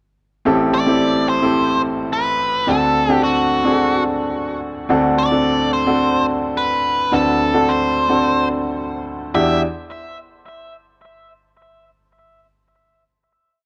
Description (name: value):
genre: pop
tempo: 108 BPM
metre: 4/4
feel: straight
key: E minor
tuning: A4 = 440 Hz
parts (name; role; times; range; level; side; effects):
- clear baby grand piano; accompaniment; 0.5-9.6 s; A1 to B4; -20 LUFS; equal; none
- biting lead guitar; melody; 0.7-9.6 s; F#4 to E5; -22 LUFS; equal; overdrive, analog delay
room: moderate spring reverb, RT60 2.0 s, small room ambience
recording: dark, warm production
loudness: -18 LUFS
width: mono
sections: 0.5-9.3 verse; 9.3-11.6 final chord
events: none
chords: 0.5 Am7; 2.7 D7; 9.3 Em9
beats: | 0.45 1.01 1.57 2.12 | 2.68 3.23 3.79 4.34 | 4.90 5.45 6.01 6.57 | 7.12 7.68 8.23 8.79 | 9.34